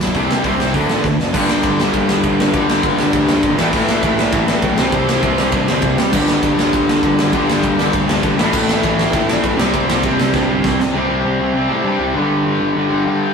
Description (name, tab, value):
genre	punk rock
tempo	200 BPM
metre	4/4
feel	straight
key	unclear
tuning	A4 = 441 Hz
part	fuzz picked electric bass	bass	0.0-13.3 s	F#1 to C3	-23 LUFS	equal	overdrive
part	big rock drum kit	drums	0.0-10.9 s	crash cymbal, hi-hat, kick drum, ride cymbal, snare drum	-19 LUFS	equal	none
part	distorted electric guitar	riff	0.1-13.3 s	G2 to D4	-19 LUFS	left 4 dB	distortion
part	distorted electric guitar	riff	0.1-13.3 s	G2 to D4	-19 LUFS	right 1 dB	distortion
part	overdriven semi-hollow guitar	riff	1.3-10.8 s	G2 to C4	-24 LUFS	right 1 dB	none
room	moderate stone room reverb, RT60 1.1 s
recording	rough rehearsal-room recording, lossy compression artefacts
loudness	-13 LUFS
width	side -6 dB against mid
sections	0.0-1.3 A section; 1.3-10.9 B section; 10.9-13.3 C section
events	drum fill 1.0, 10.3-10.9; half time 10.9-13.3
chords	0.1 C5; 0.7 D; 1.3 G5; 3.6 A5; 4.8 C5; 6.1 G5; 8.4 A5; 9.6 C5; 12.2 G5